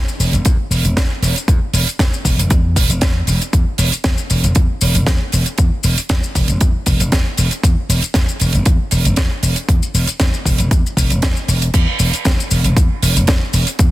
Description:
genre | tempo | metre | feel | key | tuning
nu-disco, nu disco | 117 BPM | 4/4 | straight | unclear | A4 = 444 Hz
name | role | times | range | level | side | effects
slap bass | bass | 0.0-13.9 s | E1 to E2 | -16 LUFS | equal | sidechain pumping
tight funk drum kit | drums | 0.1-13.9 s | crash cymbal, hi-hat, shaker, snare drum | -19 LUFS | right 1 dB | none
electronic kick drum | drums | 0.5-13.9 s | none | -15 LUFS | equal | none
room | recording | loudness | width
little or no reverb | dense, heavily limited modern master | -13 LUFS | side -16 dB against mid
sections
0.0-13.9 A section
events
none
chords
none

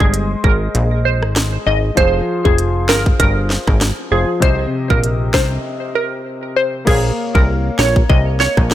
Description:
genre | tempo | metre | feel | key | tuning
dancehall | 98 BPM | 4/4 | swing 56% on 16ths | Bb dorian | A4 = 442 Hz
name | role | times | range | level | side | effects
glassy wavetable pluck | melody | 0.0-8.5 s | Ab4 to Eb5 | -19 LUFS | right 1 dB | chorus, digital delay
clear baby grand piano | accompaniment | 0.0-8.7 s | C3 to F5 | -23 LUFS | left 2 dB | none
plucky analog bass | bass | 0.0-8.7 s | F1 to C2 | -17 LUFS | equal | none
island pop drum kit | drums | 0.0-8.7 s | crash cymbal, hi-hat, kick drum, rim click, snare drum | -16 LUFS | equal | none
room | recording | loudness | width
digital ambience | none | -13 LUFS | side -12 dB against mid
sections
0.0-6.9 A section; 6.9-8.7 B section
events
break 5.6-6.9; hi-hats muted 6.9-8.7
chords
0.0 Ab; 2.0 Fm; 4.4 Cm; 6.9 Bbm

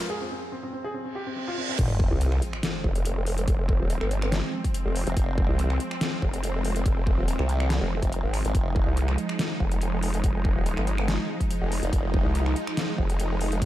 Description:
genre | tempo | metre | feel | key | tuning
heavy wobble dubstep | 142 BPM | 4/4 | half-time | F minor | A4 = 442 Hz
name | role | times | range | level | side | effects
clear grand piano | melody | 0.0-1.8 s | C4 to Ab4 | -33 LUFS | equal | tape echo
supersaw pad | sustained chords | 0.0-13.7 s | F3 to Eb4 | -32 LUFS | right 1 dB | phaser, sidechain pumping
dubstep drum kit | drums | 0.0-13.7 s | crash cymbal, finger snaps, hi-hat, snare drum | -33 LUFS | left 1 dB | overdrive, high-pass filter on snare, high-pass filter on hats, high-pass filter on cymbals, high-pass filter on room
riser, reverse cymbal and sub drop | sound effects | 0.0-3.5 s | none | -32 LUFS | equal | none
formant-sweep wobble bass | bass | 1.8-2.1, 5.1-8.9, 11.8-12.2 s | F1 to C2 | -26 LUFS | equal | chorus, overdrive
electronic kick drum | drums | 1.8-13.7 s | none | -25 LUFS | equal | overdrive
vowel-sweep wobble bass | bass | 2.1-13.7 s | Eb1 to C2 | -26 LUFS | equal | chorus, overdrive
room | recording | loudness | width
light reverb | dark, warm production | -24 LUFS | side -14 dB against mid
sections
0.0-1.8 A section; 1.8-13.7 B section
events
build-up 0.0-1.8; break 0.1-1.8; reverse cymbal 1.2-1.8; drop 1.8-13.7; impact 1.8-3.5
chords
0.0 N.C.; 1.8 Fm

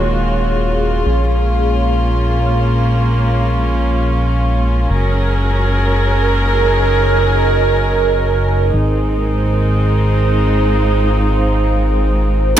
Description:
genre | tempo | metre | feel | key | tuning
techno | free time | none | none | unclear | A4 = 440 Hz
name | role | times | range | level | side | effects
warm chamber string section | sustained chords | 0.0-12.5 s | Eb3 to Bb4 | -18 LUFS | right 1 dB | none
fat analog bass | bass | 0.0-12.6 s | Eb1 to Bb1 | -15 LUFS | equal | none
deep dark ambient pad | texture | 0.0-12.6 s | Ab4 to Bb5 | -20 LUFS | right 2 dB | chorus, built-in reverb
room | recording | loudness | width
light reverb | none | -13 LUFS | side -10 dB against mid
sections
0.0-12.6 A section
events
none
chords
0.0 Ebm; 1.1 Bbm; 4.9 Gb; 8.7 Ab

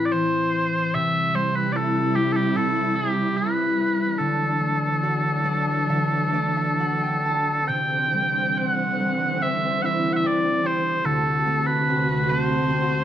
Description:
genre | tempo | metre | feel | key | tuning
celtic folk, Celtic slow air | 65-76 BPM | 4/4 | rubato | unclear | A4 = 441 Hz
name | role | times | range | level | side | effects
mellow small bagpipes | melody | 0.0-13.0 s | G4 to G5 | -23 LUFS | right 1 dB | none
concert harp | accompaniment | 0.0-13.0 s | A2 to A5 | -25 LUFS | left 1 dB | none
warm symphonic string section | sustained chords | 0.9-13.0 s | D2 to F#4 | -27 LUFS | right 2 dB | none
room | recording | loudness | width
moderate recital hall reverb, RT60 1.6 s | none | -20 LUFS | side -10 dB against mid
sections
0.0-7.7 A section; 7.7-13.0 B section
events
harp fill 5.0-7.7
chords
0.0 Am; 0.9 C; 4.2 Dadd9; 7.7 Cadd9; 11.0 D7

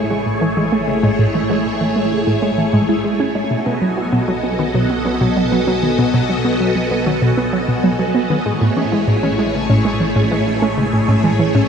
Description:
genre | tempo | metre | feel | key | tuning
ambient, sequencer-driven space music | 97 BPM | 4/4 | straight | A lydian | A4 = 440 Hz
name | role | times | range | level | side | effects
phased string machine | sustained chords | 0.0-11.7 s | A3 to D#5 | -18 LUFS | equal | ensemble chorus, phaser
wide unison pluck | arpeggios | 0.0-11.6 s | F#3 to E4 | -21 LUFS | left 1 dB | auto-pan, tape echo
fat analog bass | bass | 0.0-11.7 s | A1 to B1 | -30 LUFS | equal | none
bubbling stepped-filter texture | texture | 0.2-11.7 s | G#5 | -33 LUFS | right 4 dB | chorus, built-in reverb
analog pluck | riff | 0.1-11.7 s | A2 to C#4 | -18 LUFS | right 1 dB | chorus, tape echo
room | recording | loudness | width
wet huge ambient reverb, RT60 8.9 s | dreamy mix soaked in reverb, cassette tape | -14 LUFS | side -7 dB against mid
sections
0.0-11.7 A section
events
fade-in on analog synth bass 0.0-11.7; fade-in on synth texture 0.0-11.7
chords
0.0 Amaj7; 3.5 B7; 8.5 Amaj7

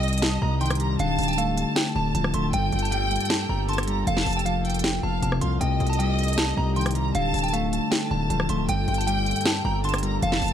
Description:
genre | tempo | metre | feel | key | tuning
hip hop, trap | 156 BPM | 4/4 | half-time | G minor | A4 = 442 Hz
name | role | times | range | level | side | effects
delicate synth tine bell | melody | 0.0-10.5 s | F5 to C6 | -30 LUFS | right 2 dB | chorus
warm studio violin section | second line | 0.0-10.5 s | Eb5 to Bb5 | -30 LUFS | equal | ping-pong delay
mellow electric guitar | accompaniment | 0.0-10.5 s | F2 to A3 | -27 LUFS | left 2 dB | none
deep dark ambient pad | sustained chords | 0.0-10.5 s | C3 to A4 | -32 LUFS | equal | chorus, built-in reverb
distorted 808-style bass | bass | 0.0-10.5 s | D1 to C2 | -27 LUFS | equal | distortion
trap drum kit | drums | 0.0-10.5 s | hi-hat, rim click, snare drum | -28 LUFS | equal | none
room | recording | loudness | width
little or no reverb | none | -21 LUFS | side -9 dB against mid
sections
0.0-10.5 A section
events
none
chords
0.0 Cm; 1.0 Dm; 2.5 Gmadd9; 4.1 F; 5.6 Cm; 7.1 Dm; 8.7 Gmadd9

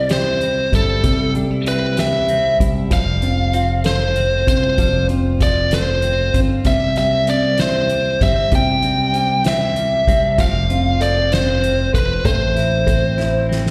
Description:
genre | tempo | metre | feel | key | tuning
six-eight pop ballad | 64 BPM (dotted quarters) | 6/8 | straight | unclear | A4 = 442 Hz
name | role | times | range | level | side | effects
biting lead guitar | melody | 0.0-13.5 s | A4 to G5 | -21 LUFS | equal | overdrive, slapback echo
dark upright piano | accompaniment | 0.0-13.7 s | C3 to A4 | -26 LUFS | equal | slapback echo
direct-recorded clean electric guitar | arpeggios | 0.0-13.7 s | G3 to G4 | -33 LUFS | equal | lush chorus, slapback echo
fretless electric bass | bass | 0.0-13.7 s | E1 to C2 | -23 LUFS | equal | none
soft-mallet drum kit | drums | 0.1-13.7 s | hi-hat, kick drum, snare drum | -24 LUFS | equal | none
room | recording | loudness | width
small room ambience | live gig heard through the venue's PA, recital hall reverb | -17 LUFS | mono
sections
0.0-13.7 A section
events
drum fill 13.2-13.7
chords
0.0 C; 2.9 Fadd9; 6.7 C; 10.4 Fadd9; 12.2 Am

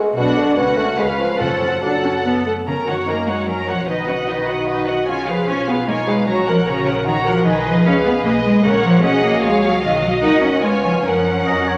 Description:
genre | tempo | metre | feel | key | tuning
quick classical-period movement for symphony orchestra | 150 BPM | 3/4 | straight | F# major | A4 = 440 Hz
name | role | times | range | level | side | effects
mellow bassoon | accompaniment | 0.0-11.8 s | B2 to F#4 | -25 LUFS | equal | none
rich studio violin section | melody | 0.2-11.8 s | D#5 to A#5 | -27 LUFS | equal | none
warm studio violin section | second line | 0.2-11.8 s | F#4 to D#5 | -25 LUFS | equal | none
rich studio viola section | accompaniment | 0.2-11.8 s | A3 to B4 | -25 LUFS | equal | none
warm studio cello section | bass | 0.2-11.8 s | C#2 to D#4 | -22 LUFS | equal | none
warm studio double bass section | bass | 0.2-11.8 s | F#1 to F#2 | -33 LUFS | equal | none
timpani | percussion | 1.4-2.0 s | F#2 | -34 LUFS | equal | none
clear oboe | second line | 11.5-11.8 s | C#5 to D#5 | -22 LUFS | equal | none
room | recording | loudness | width
wet recital hall reverb, RT60 1.6 s | none | -17 LUFS | mono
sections
0.0-2.7 A section; 2.7-11.8 A section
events
none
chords
0.2 Bm; 0.6 F#m/C#; 1.0 C#7; 1.4 F#m; 2.7 F#; 3.9 B; 5.1 C#7/B; 6.3 F#/A#; 7.5 G#m/B; 8.6 F#/A#; 9.8 B; 10.2 F#/C#; 10.6 C#7; 11.0 F#

